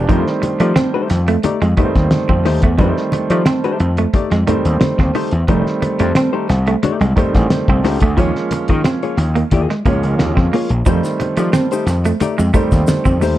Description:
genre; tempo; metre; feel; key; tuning
funk; 89 BPM; 4/4; straight; F mixolydian; A4 = 440 Hz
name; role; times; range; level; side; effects
clear upright piano; stabs; 0.0-13.3 s; Eb3 to D4; -20 LUFS; right 3 dB; analog delay, plate reverb
gritty slap bass; bass; 0.0-13.3 s; F1 to F3; -16 LUFS; left 1 dB; overdrive
hollow-body jazz guitar; accompaniment; 0.1-13.4 s; A3 to Eb5; -21 LUFS; left 6 dB; plate reverb
electric guitar at the edge of break-up; riff; 0.1-13.2 s; F3 to C4; -20 LUFS; right 4 dB; harmonic tremolo
cloth-damped thuddy drum kit; drums; 0.1-13.4 s; hi-hat, kick drum, snare drum; -17 LUFS; equal; vintage 12-bit sampler grit
congas; percussion; 0.1-13.2 s; none; -25 LUFS; right 1 dB; none
tube shaker; percussion; 10.9-13.4 s; none; -37 LUFS; left 6 dB; none
room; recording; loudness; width
light reverb; none; -13 LUFS; side -14 dB against mid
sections
0.1-13.4 A section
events
none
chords
0.1 F9; 8.2 Eb9sus4; 10.9 F9

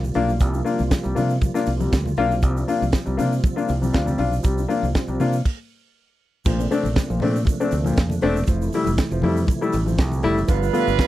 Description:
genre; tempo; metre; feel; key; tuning
disco; 119 BPM; 4/4; straight; unclear; A4 = 436 Hz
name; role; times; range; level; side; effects
tonewheel organ; sustained chords; 0.0-11.1 s; C3 to F4; -29 LUFS; right 3 dB; chorus vibrato, slow rotary speaker
fingered electric bass; bass; 0.0-11.0 s; E1 to C3; -23 LUFS; right 1 dB; none
congas; percussion; 0.0-11.1 s; none; -31 LUFS; left 5 dB; none
egg shaker; percussion; 0.0-11.1 s; none; -43 LUFS; right 14 dB; none
tight funk drum kit; drums; 0.1-11.1 s; crash cymbal, hi-hat, kick drum, snare drum; -20 LUFS; right 1 dB; none
warm concert grand piano; accompaniment; 0.2-11.0 s; G2 to F4; -23 LUFS; left 4 dB; none
warm horn section; stabs; 10.5-11.1 s; G3 to B4; -22 LUFS; right 16 dB; none
room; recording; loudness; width
little or no reverb; dry, close 1970s-style studio recording; -19 LUFS; side -14 dB against mid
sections
0.0-6.5 A section; 6.5-11.1 B section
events
stop 5.5-6.5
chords
0.0 C7sus4; 6.5 Bbmaj9; 8.5 Fmaj7; 10.5 G7

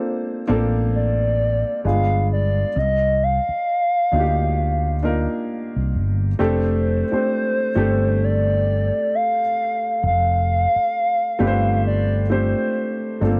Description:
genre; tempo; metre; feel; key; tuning
R&B, neo-soul; 66 BPM; 4/4; swing 59% on 16ths; F mixolydian; A4 = 441 Hz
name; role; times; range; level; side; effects
hollow clarinet-like synth lead; melody; 0.0-13.2 s; C5 to F5; -24 LUFS; equal; chorus
warm upright piano; accompaniment; 0.0-13.4 s; Ab3 to C5; -26 LUFS; equal; none
mellow fretless electric bass; bass; 0.5-13.4 s; F1 to D2; -23 LUFS; equal; subtle chorus
room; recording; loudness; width
light reverb; dry, close 1970s-style studio recording; -20 LUFS; mono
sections
0.0-13.4 A section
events
none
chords
0.0 Gm9 (rootless); 1.8 G7b9; 2.8 Cm9; 6.4 F6

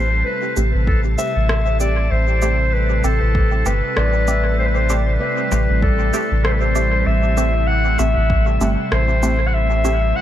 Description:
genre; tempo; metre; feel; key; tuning
ambient dub; 97 BPM; 4/4; swing 58% on 16ths; A minor; A4 = 439 Hz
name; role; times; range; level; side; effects
warm clarinet; melody; 0.0-10.2 s; A4 to F#5; -21 LUFS; left 2 dB; dub echo
soft additive organ-like pad; sustained chords; 0.0-10.2 s; C3 to A4; -26 LUFS; right 2 dB; ensemble chorus, built-in reverb
filtered dub chord stab; stabs; 0.0-10.0 s; A3 to G4; -27 LUFS; right 2 dB; phaser, dub echo
soft dub sub bass; bass; 0.0-10.1 s; G1 to A1; -18 LUFS; equal; tube saturation
electronic cabasa and rim click; drums; 0.6-10.0 s; none; -28 LUFS; right 1 dB; overdrive, dub echo
electronic kick drum; drums; 0.9-8.4 s; none; -20 LUFS; equal; none
handpan; arpeggios; 4.0-6.9 s; G3 to E5; -30 LUFS; left 4 dB; dub echo
room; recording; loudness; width
light reverb; none; -15 LUFS; side -11 dB against mid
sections
0.0-10.2 A section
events
none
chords
0.0 Am7

